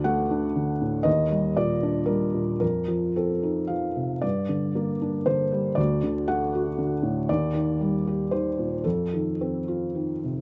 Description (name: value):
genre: neoclassical minimalist piano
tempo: 106-122 BPM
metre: 3/4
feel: rubato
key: unclear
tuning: A4 = 440 Hz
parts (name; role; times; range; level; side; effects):
- felt-muted upright piano; solo; 0.0-10.4 s; D2 to F#5; -26 LUFS; equal; none
room: moderate studio reverb, RT60 0.5 s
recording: rough home demo mix, vinyl crackle, nothing above 7.9 kHz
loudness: -26 LUFS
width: mono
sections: 0.0-10.4 A section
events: none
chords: 0.0 D; 1.1 Ebmaj7; 2.6 F7; 4.2 Gm; 5.8 D; 7.3 Ebmaj7; 8.8 F7